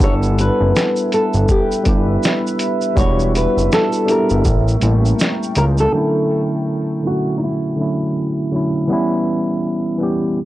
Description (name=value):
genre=lo-fi hip hop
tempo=81 BPM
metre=4/4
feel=swing 61% on 16ths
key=D major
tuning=A4 = 442 Hz
part: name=nylon-string guitar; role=melody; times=0.0-8.5 s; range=Eb4 to C#5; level=-20 LUFS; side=equal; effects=low-pass filter, analog delay
part: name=barky tine electric piano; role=accompaniment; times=0.0-10.4 s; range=D3 to A4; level=-19 LUFS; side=equal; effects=medium stereo tremolo, low-pass filter
part: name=deep dark ambient pad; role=sustained chords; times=0.0-5.9 s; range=B3 to C#6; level=-26 LUFS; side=right 3 dB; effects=chorus, built-in reverb, low-pass filter
part: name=fat analog bass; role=bass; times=0.0-5.9 s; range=E1 to C#2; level=-16 LUFS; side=equal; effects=tube saturation
part: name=lo-fi sampler-style drum kit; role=drums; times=0.0-5.9 s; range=hi-hat, kick drum, shaker, snare drum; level=-19 LUFS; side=equal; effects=none
room=light reverb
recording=dry, gritty hardware recording, cassette tape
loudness=-14 LUFS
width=side -15 dB against mid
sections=0.0-5.9 A section; 5.9-10.4 B section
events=filter sweep 5.9-10.4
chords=0.0 G6; 3.0 Em7; 4.5 A7b9; 5.9 Dmaj9; 8.9 C#m7b5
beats=| 0.01 0.75 1.49 2.23 | 2.97 3.71 4.45 5.19 | 5.93 6.67 7.41 8.15 | 8.89 9.64 10.38